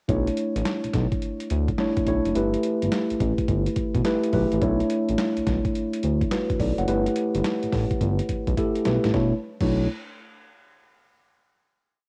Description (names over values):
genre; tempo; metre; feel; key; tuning
R&B, new jack swing; 106 BPM; 4/4; swing 65% on 16ths; B minor; A4 = 440 Hz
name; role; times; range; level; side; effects
mellow tine electric piano; accompaniment; 0.1-9.9 s; A3 to F#5; -27 LUFS; equal; cassette tape
smooth synth bass; bass; 0.1-9.9 s; F#1 to D2; -27 LUFS; equal; none
boom bap sampler-style drum kit; drums; 0.1-9.7 s; crash cymbal, handclaps, hi-hat, kick drum, snare drum; -31 LUFS; equal; overdrive
room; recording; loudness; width
light reverb; home recording on cassette; -24 LUFS; mono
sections
0.1-9.1 verse; 9.1-11.4 final chord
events
drum fill 8.0-9.1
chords
0.1 Bm11; 2.4 G69; 4.6 Bm11; 6.9 G69; 9.1 Bm11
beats
| 0.09 0.65 1.22 1.78 | 2.35 2.92 3.48 4.05 | 4.61 5.18 5.75 6.31 | 6.88 7.45 8.01 8.58 | 9.14 9.71